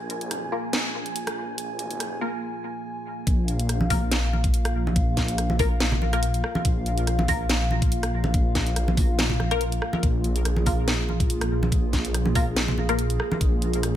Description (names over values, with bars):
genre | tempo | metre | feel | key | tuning
deep dubstep | 142 BPM | 4/4 | swing 54% on 16ths, half-time | unclear | A4 = 440 Hz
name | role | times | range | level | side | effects
dark analog pad | sustained chords | 0.0-14.0 s | Bb3 to Ab5 | -31 LUFS | equal | chorus
dark detuned saw bass | bass | 0.0-14.0 s | Bb1 | -26 LUFS | equal | high-pass filter
wind-like tuned noise texture | texture | 0.0-2.4 s | Ab4 | -39 LUFS | right 4 dB | built-in reverb
garage drum kit | drums | 0.1-13.9 s | hi-hat, rim click, snare drum | -28 LUFS | equal | studio ambience
filtered dub chord stab | stabs | 0.5-13.0 s | Bb3 to Bb4 | -31 LUFS | left 4 dB | phaser, analog chorus, vintage 12-bit sampler grit, dub echo
electronic kick drum | drums | 3.3-13.5 s | none | -23 LUFS | equal | studio ambience
congas | percussion | 3.8-13.4 s | none | -30 LUFS | right 2 dB | none
room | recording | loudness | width
little or no reverb | none | -22 LUFS | side -11 dB against mid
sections
0.0-3.3 A section; 3.3-14.0 B section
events
build-up 0.0-3.3; filter sweep on synth stab 0.0-3.3; break 2.4-3.3; drop 3.3-14.0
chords
0.0 Bb5